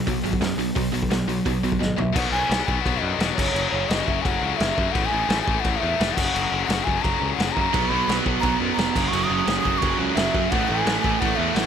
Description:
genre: punk rock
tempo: 172 BPM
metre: 4/4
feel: straight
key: unclear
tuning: A4 = 439 Hz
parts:
  - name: overdriven electric guitar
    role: riff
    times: 0.0-2.1, 7.7-11.7 s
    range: F#2 to B3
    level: -25 LUFS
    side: right 16 dB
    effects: none
  - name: tight distorted guitar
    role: riff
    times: 0.0-11.7 s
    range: F#2 to B3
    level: -25 LUFS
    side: left 16 dB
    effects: distortion
  - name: modern bright picked electric bass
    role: bass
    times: 0.1-11.7 s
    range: E1 to F#2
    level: -29 LUFS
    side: equal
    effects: none
  - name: loose indie drum kit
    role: drums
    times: 0.1-11.6 s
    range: crash cymbal, hi-hat, kick drum, snare drum, toms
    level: -25 LUFS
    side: equal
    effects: none
  - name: mellow bansuri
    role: melody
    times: 1.8-11.7 s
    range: C#5 to D#6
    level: -26 LUFS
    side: right 2 dB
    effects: none
room: little or no reverb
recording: none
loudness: -20 LUFS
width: side -8 dB against mid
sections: 0.0-2.2 A section; 2.2-11.7 B section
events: drum fill 1.8-2.2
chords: 0.0 B5; 2.2 B; 3.4 F#5; 4.9 A5; 6.2 F#; 7.7 B5; 9.0 F#5; 10.5 A5

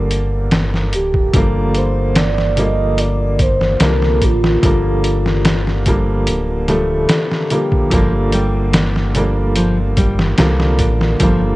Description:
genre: trip hop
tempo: 73 BPM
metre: 4/4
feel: straight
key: G minor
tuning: A4 = 440 Hz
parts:
  - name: warm upright piano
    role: accompaniment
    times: 0.0-11.6 s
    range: D3 to Bb3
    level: -18 LUFS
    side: right 1 dB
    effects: tremolo
  - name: round analog bass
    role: bass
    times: 0.0-11.6 s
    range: D1 to C2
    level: -18 LUFS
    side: equal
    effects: tube saturation
  - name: trip hop sampler-style drum kit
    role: drums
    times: 0.1-11.4 s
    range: hi-hat, kick drum, snare drum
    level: -16 LUFS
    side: equal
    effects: none
  - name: pure breathy sine lead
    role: melody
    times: 0.9-7.9 s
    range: F4 to Eb5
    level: -21 LUFS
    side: equal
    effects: phaser, wide subtle chorus, tape echo
  - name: nylon-string guitar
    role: arpeggios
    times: 7.9-11.4 s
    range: F3 to D4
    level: -21 LUFS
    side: left 1 dB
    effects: vintage 12-bit sampler grit, tape echo
room: light reverb, digital ambience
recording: worn, warbling old tape, cassette tape, warbly pitch drift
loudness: -13 LUFS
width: side -18 dB against mid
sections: 0.0-11.6 A section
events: none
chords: 0.0 Gm7

